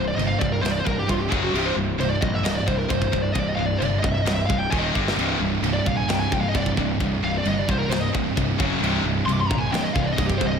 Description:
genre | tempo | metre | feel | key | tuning
heavy metal | 132 BPM | 4/4 | straight | C minor | A4 = 440 Hz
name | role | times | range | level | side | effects
high-gain lead guitar | melody | 0.0-10.6 s | F4 to D6 | -27 LUFS | equal | distortion, digital delay
high-gain distorted guitar | riff | 0.0-10.6 s | C2 to G3 | -27 LUFS | left 9 dB | distortion, slapback echo
high-gain distorted guitar | riff | 0.0-10.6 s | C2 to G3 | -27 LUFS | right 8 dB | distortion, slapback echo
fuzz picked electric bass | bass | 0.0-10.6 s | C1 to Bb1 | -28 LUFS | equal | overdrive
tight metal drum kit | drums | 0.2-10.5 s | china cymbal, kick drum, snare drum | -28 LUFS | equal | none
thick fuzz guitar | riff | 5.2-10.6 s | C2 to C3 | -28 LUFS | right 1 dB | distortion, slapback echo
room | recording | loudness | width
light reverb, small room ambience | none | -20 LUFS | side -6 dB against mid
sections
0.0-10.6 A section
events
lead electric guitar solo 0.0-10.6; drum fill 5.0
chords
0.0 C5; 1.3 F#5; 1.5 C5; 4.7 Eb5; 5.0 G5; 5.2 C5; 8.6 F#5; 8.8 C5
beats
0.18 0.63 1.09 | 1.54 2.00 2.45 2.91 | 3.36 3.82 4.27 4.72 | 5.18 5.63 6.09 6.54 | 7.00 7.45 7.91 8.36 | 8.81 9.27 9.72 10.18

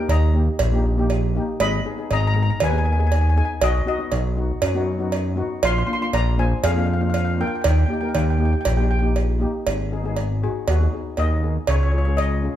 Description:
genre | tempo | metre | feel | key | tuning
calypso | 119 BPM | 4/4 | straight | unclear | A4 = 441 Hz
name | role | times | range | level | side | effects
steel pan | accompaniment | 0.0-12.6 s | A#3 to A#4 | -28 LUFS | left 2 dB | none
steel pan | melody | 0.1-12.6 s | F#4 to B#5 | -26 LUFS | left 2 dB | none
fat analog bass | bass | 0.1-12.5 s | G#1 to F#2 | -20 LUFS | equal | none
cowbell | percussion | 0.1-12.3 s | none | -25 LUFS | right 6 dB | none
room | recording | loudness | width
moderate large studio reverb, RT60 1.1 s | band playing live in one room | -18 LUFS | side -11 dB against mid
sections
0.0-9.7 A section; 9.7-12.6 B section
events
steel pan solo 9.7-12.6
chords
0.0 D#; 1.6 G#m; 3.6 B; 5.6 A#; 7.6 D#; 9.7 G#m7; 11.7 C#add9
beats
0.09 0.60 1.10 | 1.60 2.11 2.61 3.12 | 3.62 4.12 4.62 5.13 | 5.63 6.13 6.64 7.14 | 7.65 8.15 8.65 9.16 | 9.66 10.17 10.67 11.18 | 11.68 12.19

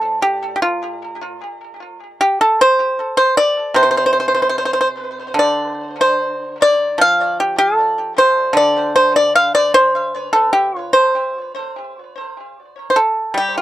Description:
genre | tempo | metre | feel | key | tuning
chinese traditional, Chinese solo plucked strings | 76 BPM | 2/4 | rubato | C zhi mode | A4 = 440 Hz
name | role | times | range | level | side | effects
pipa | solo | 0.0-13.6 s | A2 to F5 | -14 LUFS | equal | tape echo
room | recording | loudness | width
light reverb | dry, close 1970s-style studio recording | -13 LUFS | side -14 dB against mid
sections
0.0-11.7 A section; 11.7-13.6 B section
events
none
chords
none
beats
| 0.63 1.43 | 2.21 2.99 | 3.77 4.56 | 5.37 6.19 | 6.99 7.77 | 8.54 9.32 | 10.11 10.92 | 11.75 12.56 | 13.36

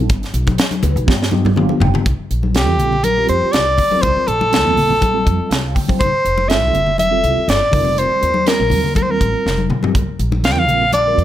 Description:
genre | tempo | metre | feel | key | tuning
electric jazz fusion | 122 BPM | 4/4 | swing 54% on 16ths | C minor | A4 = 440 Hz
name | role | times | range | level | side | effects
mellow tine electric piano | accompaniment | 0.0-11.2 s | G3 to G5 | -23 LUFS | right 2 dB | medium stereo tremolo, phaser
upright bass | bass | 0.0-11.2 s | F1 to G2 | -20 LUFS | equal | none
crisp fusion drum kit | drums | 0.1-11.2 s | hi-hat, kick drum, snare drum, toms | -19 LUFS | equal | none
congas | percussion | 0.5-11.1 s | none | -23 LUFS | left 4 dB | none
bright soprano saxophone | melody | 2.6-11.2 s | G4 to G5 | -16 LUFS | equal | none
room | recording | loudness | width
light reverb | none | -13 LUFS | side -12 dB against mid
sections
0.0-2.1 A section; 2.1-11.2 B section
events
tine electric piano fill 0.6-2.1, 5.0-6.0; drum fill 1.1-2.1, 9.5-9.9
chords
0.1 G7; 2.1 C7sus4; 6.0 G13sus4; 7.7 F9sus4; 9.9 C7sus4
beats
| 0.09 0.58 1.07 1.56 | 2.06 2.55 3.04 3.53 | 4.03 4.52 5.01 5.50 | 6.00 6.49 6.98 7.48 | 7.97 8.46 8.96 9.45 | 9.95 10.44 10.93

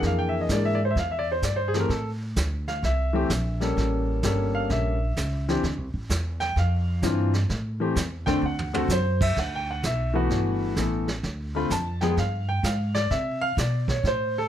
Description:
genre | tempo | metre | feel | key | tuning
jazz piano trio | 128 BPM | 4/4 | swing 66% on 8ths | D minor | A4 = 440 Hz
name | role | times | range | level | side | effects
clear concert grand piano | melody | 0.0-14.5 s | D3 to B5 | -26 LUFS | left 1 dB | none
upright bass | bass | 0.0-14.5 s | G1 to C3 | -26 LUFS | equal | none
vintage brush drum kit | drums | 0.0-14.5 s | brushed snare drum, crash cymbal, hi-hat, kick drum, snare drum, toms | -31 LUFS | right 2 dB | none
room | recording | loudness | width
moderate studio reverb, RT60 0.7 s | none | -23 LUFS | side -10 dB against mid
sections
0.0-9.4 A section; 9.4-14.5 A section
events
grand piano solo 0.0-14.5; drum fill 8.4-8.9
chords
0.0 Bb7#11; 1.9 Am; 3.8 A7b9; 5.6 Dm9; 7.5 Am7; 8.4 D7; 9.4 Gmaj13; 11.2 Dm; 12.2 Fmadd9/G; 13.1 Cmaj13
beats
| 0.02 0.49 0.96 1.42 | 1.89 2.36 2.83 3.29 | 3.76 4.23 4.70 5.16 | 5.63 6.10 6.57 7.03 | 7.50 7.97 8.43 8.90 | 9.37 9.84 10.30 10.77 | 11.24 11.71 12.17 12.64 | 13.11 13.58 14.04

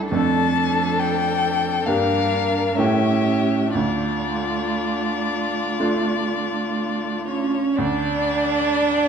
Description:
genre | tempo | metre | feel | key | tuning
classical, slow romantic movement for piano quintet | 58-69 BPM | 4/4 | rubato | D minor | A4 = 439 Hz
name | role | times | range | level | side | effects
rich cello | second line | 0.0-9.1 s | F3 to D4 | -24 LUFS | right 5 dB | none
warm violin | second line | 0.0-9.1 s | F4 to D5 | -27 LUFS | left 4 dB | none
bright baby grand piano | accompaniment | 0.0-9.1 s | D2 to A4 | -25 LUFS | right 2 dB | none
warm viola | accompaniment | 0.0-7.5 s | C#4 to D4 | -29 LUFS | right 4 dB | none
rich violin | melody | 0.1-9.1 s | C#5 to A5 | -25 LUFS | left 8 dB | none
room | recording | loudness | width
wet recital hall reverb, RT60 1.6 s | dark, warm production | -19 LUFS | side -7 dB against mid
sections
0.0-7.8 A section; 7.8-9.1 A section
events
none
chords
0.1 Dm/F; 1.9 Gm; 2.8 A7; 3.7 Dm; 7.8 N.C.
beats
| 0.10 0.99 1.87 2.77 | 3.75 4.78 5.78 6.78 | 7.76 8.67

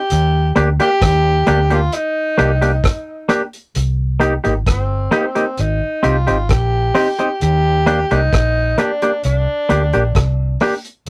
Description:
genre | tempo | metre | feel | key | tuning
roots reggae | 66 BPM | 4/4 | straight | Eb major | A4 = 440 Hz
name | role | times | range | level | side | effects
clear tenor saxophone | melody | 0.0-10.6 s | C4 to G4 | -22 LUFS | equal | none
vintage muted fingered electric bass | bass | 0.1-10.6 s | G1 to Eb2 | -19 LUFS | equal | none
cloth-damped thuddy drum kit | drums | 0.1-11.1 s | hi-hat, kick drum, rim click | -22 LUFS | equal | tape echo
semi-hollow electric guitar | accompaniment | 0.6-10.7 s | Bb3 to G4 | -18 LUFS | equal | none
room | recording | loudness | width
wet booth ambience, RT60 0.2 s | rough rehearsal-room recording, tube saturation | -16 LUFS | mono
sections
0.0-3.8 A section; 3.8-11.1 B section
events
none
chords
0.1 Ebmaj7; 3.8 Cm7; 5.6 Abmaj7; 7.4 Ebmaj7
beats
| 0.10 1.02 1.93 2.84 | 3.75 4.67 5.58 6.50 | 7.41 8.32 9.24 10.15 | 11.07

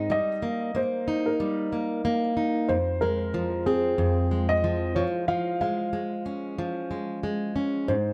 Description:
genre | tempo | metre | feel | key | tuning
acoustic pop | 93 BPM | 4/4 | swing 55% on 16ths | unclear | A4 = 441 Hz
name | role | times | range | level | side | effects
dark upright piano | melody | 0.0-8.1 s | Ab4 to F5 | -31 LUFS | equal | tape echo
fingerpicked plugged-in steel-string acoustic guitar | accompaniment | 0.0-8.1 s | F2 to Eb4 | -28 LUFS | equal | none
room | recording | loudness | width
light reverb | none | -27 LUFS | mono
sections
0.0-8.1 A section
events
none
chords
0.1 Eb/G; 2.7 Fm; 5.0 Db/F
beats
| 0.10 0.75 1.40 2.05 | 2.69 3.34 3.99 4.64 | 5.29 5.93 6.58 7.23 | 7.88

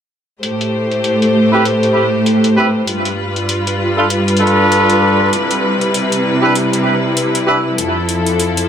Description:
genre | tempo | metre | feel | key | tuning
glitch hop | 98 BPM | 4/4 | swing 58% on 16ths | A minor | A4 = 440 Hz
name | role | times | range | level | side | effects
clear symphonic string section | sustained chords | 0.4-8.7 s | F2 to C5 | -14 LUFS | equal | none
electronic hi-hat | drums | 0.4-8.7 s | none | -21 LUFS | left 2 dB | overdrive, low-pass filter on hats, low-pass filter on room
warm horn section | stabs | 1.5-7.6 s | C4 to B4 | -16 LUFS | equal | low-pass filter, tape echo
room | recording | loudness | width
moderate plate reverb, RT60 1.6 s, small room ambience | echo-heavy mix | -12 LUFS | side -8 dB against mid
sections
0.4-8.7 A section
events
none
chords
0.4 Am7; 2.9 G7; 5.3 Cmaj7; 7.8 Fmaj7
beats
| 0.43 1.04 1.65 2.27 | 2.88 3.49 4.10 4.71 | 5.33 5.94 6.55 7.16 | 7.78 8.39

